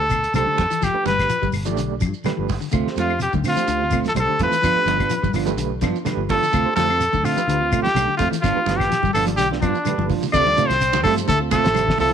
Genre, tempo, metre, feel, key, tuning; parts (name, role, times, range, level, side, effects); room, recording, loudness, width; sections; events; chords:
afrobeat; 126 BPM; 4/4; straight; D dorian; A4 = 440 Hz
clear trumpet; melody; 0.0-12.1 s; D4 to D5; -20 LUFS; left 1 dB
overdriven reed electric piano; accompaniment; 0.0-11.9 s; A3 to D5; -29 LUFS; right 12 dB; fast tremolo
fingered electric bass; bass; 0.0-12.1 s; G1 to D3; -26 LUFS; left 1 dB
semi-hollow electric guitar; arpeggios; 0.1-12.1 s; B2 to G3; -28 LUFS; left 11 dB; analog chorus
cloth-damped thuddy drum kit; drums; 0.1-12.1 s; hi-hat, kick drum, snare drum; -27 LUFS; left 1 dB
claves; percussion; 0.1-11.9 s; -33 LUFS; left 15 dB
shekere; percussion; 0.1-12.1 s; -32 LUFS; right 6 dB
congas; percussion; 0.4-12.1 s; -29 LUFS; right 10 dB
semi-hollow electric guitar; stabs; 2.7-12.1 s; F3 to F4; -26 LUFS; right 10 dB
breathy tenor saxophone; second line; 10.3-12.1 s; A3 to D4; -29 LUFS; right 11 dB
light reverb, small room ambience; 1960s-style stereo with parts hard left and right; -17 LUFS; side -8 dB against mid
0.0-10.3 A section; 10.3-12.1 B section
drum fill 10.0-10.3
0.0 Dm7; 0.8 G7; 2.7 Dm7; 4.6 G7; 6.5 Dm7; 8.4 G7; 10.3 Dm7